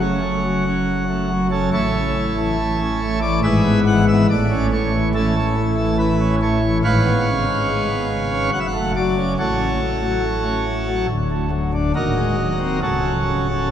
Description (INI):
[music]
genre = classical, chorale-style piece for pipe organ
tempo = 70 BPM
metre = 3/4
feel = rubato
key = F# minor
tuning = A4 = 440 Hz
[part]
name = pipe organ, principal chorus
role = solo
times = 0.0-13.7 s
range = C#1 to F#5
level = -17 LUFS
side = equal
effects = none
[sound]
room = wet church reverb, RT60 3.7 s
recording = none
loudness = -17 LUFS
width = side -9 dB against mid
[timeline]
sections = 0.0-13.7 A section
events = none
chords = 0.0 F#m; 1.7 A; 3.4 E/G#; 4.3 A; 6.8 C#7/G#; 8.5 F#m; 9.4 F#m/A; 11.1 D; 12.0 G#7/D#; 12.8 F#m/C#